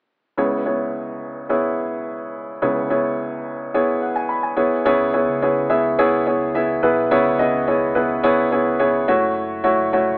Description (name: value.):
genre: pop.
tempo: 107 BPM.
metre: 4/4.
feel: straight.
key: C# minor.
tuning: A4 = 440 Hz.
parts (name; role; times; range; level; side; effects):
warm baby grand piano; accompaniment; 0.4-10.2 s; C#2 to B5; -17 LUFS; equal; none.
picked electric bass; bass; 4.9-10.2 s; F#1 to C#2; -36 LUFS; equal; none.
room: wet booth ambience, RT60 0.2 s.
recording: AM radio sound.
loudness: -17 LUFS.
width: side -27 dB against mid.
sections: 0.4-4.9 A section; 4.9-10.2 B section.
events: none.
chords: 0.4 C#m7; 9.1 F#m7.